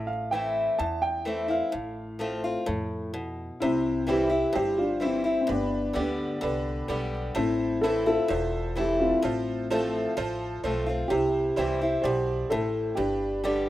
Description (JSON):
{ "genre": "honky-tonk and classic country", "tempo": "128 BPM", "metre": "4/4", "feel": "straight", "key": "C major", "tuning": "A4 = 441 Hz", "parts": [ { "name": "dark upright piano", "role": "melody", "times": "0.0-13.7 s", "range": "B3 to A5", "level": "-27 LUFS", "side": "equal", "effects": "none" }, { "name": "picked old ladder-braced acoustic guitar", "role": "accompaniment", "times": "0.0-13.7 s", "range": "E2 to G4", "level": "-29 LUFS", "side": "left 1 dB", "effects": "none" }, { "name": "upright bass", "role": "bass", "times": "0.0-13.7 s", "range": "E1 to F2", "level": "-35 LUFS", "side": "equal", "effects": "none" }, { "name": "tack piano", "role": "accompaniment", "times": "3.6-13.7 s", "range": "D4 to B5", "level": "-34 LUFS", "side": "right 4 dB", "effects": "none" } ], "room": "light reverb", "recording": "rough home demo mix", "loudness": "-25 LUFS", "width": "side -14 dB against mid", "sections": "0.0-3.6 A section; 3.6-13.7 A section", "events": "honky-tonk piano fill 6.7-7.4", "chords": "0.0 Am; 1.7 F/A; 3.6 C; 5.5 G; 7.4 Am; 9.2 F/A; 11.1 C; 13.0 G" }